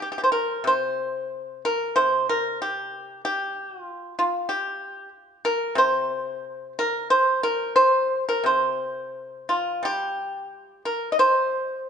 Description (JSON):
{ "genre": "chinese traditional, Chinese solo plucked strings", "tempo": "83-98 BPM", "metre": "4/4", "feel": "rubato", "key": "unclear", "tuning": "A4 = 440 Hz", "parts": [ { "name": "pipa", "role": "solo", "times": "0.0-11.9 s", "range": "C3 to Eb5", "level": "-22 LUFS", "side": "equal", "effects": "none" } ], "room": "moderate recital hall reverb, RT60 1.7 s", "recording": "nothing above 10.6 kHz", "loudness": "-21 LUFS", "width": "side -7 dB against mid", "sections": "0.0-11.9 A section", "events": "none", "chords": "none" }